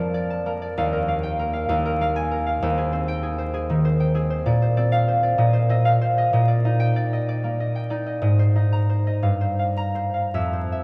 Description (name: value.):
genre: classical, solo harp piece.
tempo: 64 BPM (dotted quarters).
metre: 6/8.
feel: rubato.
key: unclear.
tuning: A4 = 440 Hz.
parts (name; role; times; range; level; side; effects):
concert harp; solo; 0.0-10.8 s; Eb2 to Bb5; -22 LUFS; equal; none.
room: wet cathedral reverb, RT60 5.2 s.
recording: vinyl crackle.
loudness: -22 LUFS.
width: mono.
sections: 0.0-10.8 A section.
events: none.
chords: 0.0 Bbmaj7/F; 0.8 Ebadd9; 1.7 Fm11/Eb; 2.6 Abmaj7/Eb; 4.5 Bbadd9; 5.4 Cm11/Bb; 6.3 Ebmaj7/Bb; 8.2 Abadd9; 9.2 Gm7; 10.3 Fmaj7(no3).